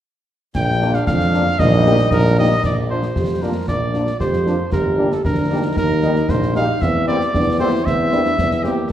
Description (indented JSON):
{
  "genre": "military-style march for wind band",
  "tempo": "115 BPM",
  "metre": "2/4",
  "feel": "straight",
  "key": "Bb major",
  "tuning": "A4 = 440 Hz",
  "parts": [
    { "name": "concert snare drum, clash cymbals and concert bass drum", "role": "drums", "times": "0.5-8.8 s", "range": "none", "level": "-23 LUFS", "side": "equal", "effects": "none" },
    { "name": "warm cornet", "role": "melody", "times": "0.6-8.9 s", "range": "G4 to G5", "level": "-21 LUFS", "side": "equal", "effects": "none" },
    { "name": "mellow trombone section", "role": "sustained chords", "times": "0.6-8.7 s", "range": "F3 to Eb4", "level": "-27 LUFS", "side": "equal", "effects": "none" },
    { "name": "clear tuba", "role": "bass", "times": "0.6-8.8 s", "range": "G1 to F2", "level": "-19 LUFS", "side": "right 1 dB", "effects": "none" },
    { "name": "mellow French horn section", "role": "accompaniment", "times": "0.8-8.7 s", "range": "Bb3 to G4", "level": "-26 LUFS", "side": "left 3 dB", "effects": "none" },
    { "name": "mellow euphonium", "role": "second line", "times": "2.6-8.9 s", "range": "Bb3 to G4", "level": "-24 LUFS", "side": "right 1 dB", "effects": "none" }
  ],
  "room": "wet large studio reverb, RT60 1.2 s",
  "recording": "heard from further back in the room, lossy compression artefacts",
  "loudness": "-15 LUFS",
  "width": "side -11 dB against mid",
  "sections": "0.6-2.6 A section; 2.6-8.9 B section",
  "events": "none",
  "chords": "0.6 Bb; 1.6 Eb/Bb; 2.6 Bb; 4.7 Gm; 5.8 Eb; 6.8 C7/E"
}